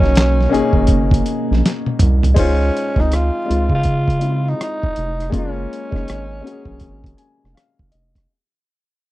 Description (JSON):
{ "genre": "R&B, neo-soul", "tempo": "81 BPM", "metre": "4/4", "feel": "swing 64% on 16ths", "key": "Db major", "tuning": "A4 = 440 Hz", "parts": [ { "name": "growling tenor saxophone", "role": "melody", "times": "0.0-7.5 s", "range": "Db4 to F4", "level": "-23 LUFS", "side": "right 1 dB", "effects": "slapback echo" }, { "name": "warm grand piano", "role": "accompaniment", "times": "0.0-8.3 s", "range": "Ab3 to Ab5", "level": "-22 LUFS", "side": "left 5 dB", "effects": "none" }, { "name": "ethereal airy pad", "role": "sustained chords", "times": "0.2-2.3 s", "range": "Cb3 to D#5", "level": "-26 LUFS", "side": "right 3 dB", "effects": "ensemble chorus, built-in reverb" }, { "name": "round analog bass", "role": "bass", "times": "0.0-8.3 s", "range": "F1 to Db3", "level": "-17 LUFS", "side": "equal", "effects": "none" }, { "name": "dusty soul sampler-style drum kit", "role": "drums", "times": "0.0-8.3 s", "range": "crash cymbal, handclaps, hi-hat, kick drum, rim click, snare drum, toms", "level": "-18 LUFS", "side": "right 1 dB", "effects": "overdrive" } ], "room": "little or no reverb", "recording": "dry, close 1970s-style studio recording", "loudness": "-15 LUFS", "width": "side -16 dB against mid", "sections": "0.0-2.4 A section; 2.4-8.3 B section", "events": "drum fill 1.6-2.4; fade-out 2.4-8.3; grand piano fill 6.8-8.3", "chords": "0.0 Cbmaj9; 2.4 Dbmaj9; 5.3 Gbmaj9" }